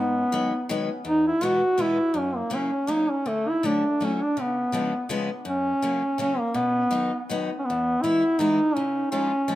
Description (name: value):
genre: musette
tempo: 164 BPM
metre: 3/4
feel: straight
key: B major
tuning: A4 = 439 Hz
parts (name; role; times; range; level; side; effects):
- warm duduk; melody; 0.0-9.6 s; A3 to F#4; -23 LUFS; equal; tape echo
- picked steel-string acoustic guitar; accompaniment; 0.0-9.6 s; E2 to E#4; -30 LUFS; left 3 dB; none
room: wet studio reverb, RT60 0.6 s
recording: none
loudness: -22 LUFS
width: side -14 dB against mid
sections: 0.0-7.7 A section; 7.7-9.6 B section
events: none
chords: 0.0 G#m7; 1.0 E; 2.1 F#; 3.3 Dmaj7; 4.4 C#7; 5.5 F#; 6.5 B; 7.7 E; 8.8 C#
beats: 0.32 0.69 | 1.05 1.41 1.78 | 2.14 2.51 2.88 | 3.25 3.62 4.00 | 4.36 4.73 5.09 | 5.46 5.82 6.18 | 6.55 6.91 7.29 | 7.66 8.03 8.39 | 8.76 9.12 9.48